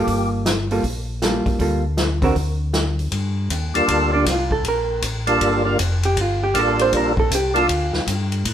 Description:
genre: soul jazz organ trio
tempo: 158 BPM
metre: 4/4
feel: swing 64% on 8ths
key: G minor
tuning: A4 = 441 Hz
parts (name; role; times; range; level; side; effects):
- percussive tonewheel organ; melody; 0.0-0.3, 3.7-7.7 s; G3 to Bb4; -19 LUFS; right 1 dB; slow rotary speaker, overdrive, chorus vibrato
- hollow-body jazz guitar; accompaniment; 0.0-8.0 s; D3 to C5; -21 LUFS; right 2 dB; none
- mellow tonewheel organ; bass; 0.0-8.5 s; F1 to A2; -23 LUFS; left 1 dB; overdrive, chorus vibrato, slow rotary speaker
- vintage drum kit; drums; 0.1-8.5 s; hi-hat, kick drum, ride cymbal, snare drum; -24 LUFS; left 1 dB; none
room: moderate stone room reverb, RT60 1.0 s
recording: band playing live in one room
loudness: -17 LUFS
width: side -9 dB against mid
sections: 0.0-3.1 A section; 3.1-8.5 B section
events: hollow-body jazz guitar solo 3.1-8.5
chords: 0.1 Gm9; 2.4 N.C.; 3.1 Gm9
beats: | 0.08 0.46 0.84 1.22 | 1.60 1.98 2.37 2.75 | 3.13 3.51 3.89 4.27 | 4.65 5.03 5.41 5.79 | 6.17 6.55 6.93 7.31 | 7.69 8.07 8.45

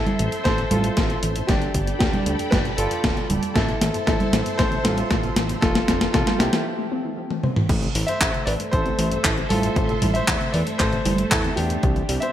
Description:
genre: italo disco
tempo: 116 BPM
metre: 4/4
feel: straight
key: unclear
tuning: A4 = 436 Hz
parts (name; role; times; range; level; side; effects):
- clear concert grand piano; melody; 0.0-12.3 s; D4 to E5; -26 LUFS; equal; digital delay
- string machine, full ensemble; sustained chords; 0.0-12.3 s; A3 to C6; -30 LUFS; equal; phaser, ensemble chorus
- fat analog bass; bass; 0.0-12.2 s; D1 to E2; -26 LUFS; equal; none
- warbly dusty pluck; arpeggios; 0.1-12.3 s; F2 to C4; -31 LUFS; left 2 dB; chorus, digital delay
- gated 80s digital drum machine; drums; 0.1-12.3 s; congas, crash cymbal, handclaps, hi-hat, snare drum, toms; -23 LUFS; equal; gated reverb, gated reverb snare
- electronic kick drum; drums; 0.5-11.9 s; none; -25 LUFS; equal; overdrive
room: moderate plate reverb, RT60 2.3 s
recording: bright 1980s-style digital production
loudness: -19 LUFS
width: side -11 dB against mid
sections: 0.0-7.7 A section; 7.7-12.3 B section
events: drum fill 0.0-6.7, 7.3-7.7; filter sweep on synth arpeggio sound 0.0-7.7; break 6.7-7.7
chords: 0.0 Am; 1.5 Gadd9; 3.6 Am; 5.6 Fadd9; 7.7 Am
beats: 0.45 0.97 | 1.49 2.00 2.52 3.04 | 3.56 4.07 4.59 5.11 | 5.62 6.14 6.66 7.18 | 7.69 8.21 8.73 9.24 | 9.76 10.28 10.80 11.31 | 11.83

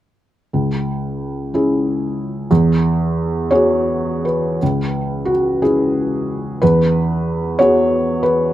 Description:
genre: neoclassical minimalist piano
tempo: 53-64 BPM (dotted quarters)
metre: 6/8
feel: rubato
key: C# minor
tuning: A4 = 440 Hz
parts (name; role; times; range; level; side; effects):
- felt-muted upright piano; solo; 0.5-8.5 s; C#2 to C#5; -15 LUFS; equal; none
room: little or no reverb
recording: recorded outdoors, with no room sound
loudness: -15 LUFS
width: side -13 dB against mid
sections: 0.5-4.6 A section; 4.6-8.5 B section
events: none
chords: 0.5 C#m; 2.5 Eadd9; 4.6 C#m; 6.6 Eadd9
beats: | 0.52 1.53 | 2.50 3.52 | 4.61 5.62 | 6.61 7.58

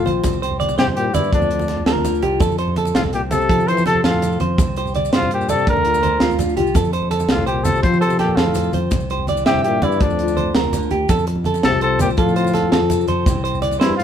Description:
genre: highlife guitar band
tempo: 111 BPM (dotted quarters)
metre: 12/8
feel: straight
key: F major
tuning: A4 = 440 Hz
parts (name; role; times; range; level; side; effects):
- breathy trumpet; melody; 0.0-14.0 s; D4 to C5; -21 LUFS; left 1 dB; none
- breathy trombone; second line; 0.0-14.0 s; F2 to F3; -24 LUFS; left 5 dB; none
- nylon-string guitar; accompaniment; 0.0-14.0 s; F2 to A4; -26 LUFS; left 9 dB; none
- clean electric guitar; arpeggios; 0.0-14.0 s; F4 to E5; -22 LUFS; right 4 dB; none
- fingered electric bass; bass; 0.0-14.0 s; Bb1 to F3; -23 LUFS; equal; none
- tight funk drum kit; drums; 0.1-14.0 s; hi-hat, kick drum, snare drum; -21 LUFS; equal; none
- congas; percussion; 0.1-14.0 s; none; -26 LUFS; right 2 dB; none
- maracas; percussion; 0.2-14.0 s; none; -39 LUFS; left 7 dB; none
room: light reverb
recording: band playing live in one room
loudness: -15 LUFS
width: side -9 dB against mid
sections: 0.0-14.0 A section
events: none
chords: 0.2 C; 1.3 Bb/D; 2.4 F; 4.6 C; 5.7 Bb/D; 6.8 F; 8.9 C; 10.0 Bb/D; 11.1 F; 13.3 C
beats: | 0.24 0.78 1.33 1.87 | 2.41 2.96 3.50 4.04 | 4.58 5.13 5.67 6.21 | 6.76 7.30 7.84 8.38 | 8.93 9.47 10.01 10.55 | 11.10 11.64 12.18 12.72 | 13.27 13.81

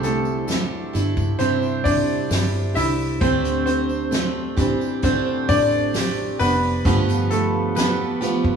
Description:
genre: pop ballad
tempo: 66 BPM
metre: 4/4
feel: straight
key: C major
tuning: A4 = 440 Hz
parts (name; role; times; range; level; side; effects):
- clear concert grand piano; accompaniment; 0.0-8.6 s; D3 to E5; -22 LUFS; equal; none
- picked plugged-in steel-string acoustic guitar; arpeggios; 0.0-8.6 s; G2 to G4; -25 LUFS; right 5 dB; none
- fingered electric bass; bass; 0.0-8.6 s; F1 to D2; -26 LUFS; equal; none
- soft-mallet drum kit; drums; 0.0-8.6 s; hi-hat, kick drum, snare drum; -26 LUFS; equal; none
- tambourine; percussion; 0.0-8.4 s; none; -42 LUFS; left 5 dB; none
room: wet stone room reverb, RT60 1.2 s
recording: band playing live in one room, small room ambience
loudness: -18 LUFS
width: side -6 dB against mid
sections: 0.0-8.6 A section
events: grand piano solo 0.0-8.6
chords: 0.0 Cadd9; 3.2 D7sus4; 6.8 G7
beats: 0.49 1.40 2.30 | 3.21 4.12 5.03 5.94 | 6.85 7.76

